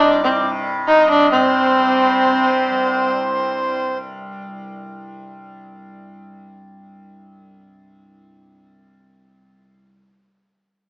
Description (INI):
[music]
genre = indian classical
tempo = 134 BPM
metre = 4/4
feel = straight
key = unclear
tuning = A4 = 440 Hz
[part]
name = rich sarangi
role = melody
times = 0.0-3.9 s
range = C4 to Eb4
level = -15 LUFS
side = equal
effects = none
[part]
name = hand-pumped harmonium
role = second line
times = 0.0-4.0 s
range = C5 to Eb5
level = -21 LUFS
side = right 1 dB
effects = none
[part]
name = tanpura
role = drone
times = 0.0-9.9 s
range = C2 to C3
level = -25 LUFS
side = equal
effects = none
[sound]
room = moderate studio reverb, RT60 0.6 s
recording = worn, warbling old tape, cassette tape, warbly pitch drift, small speaker sound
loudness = -14 LUFS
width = side -26 dB against mid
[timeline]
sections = 0.0-1.3 A section; 1.3-3.1 B section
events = none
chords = none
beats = 0.42 0.87 | 1.32 1.77 2.22 2.66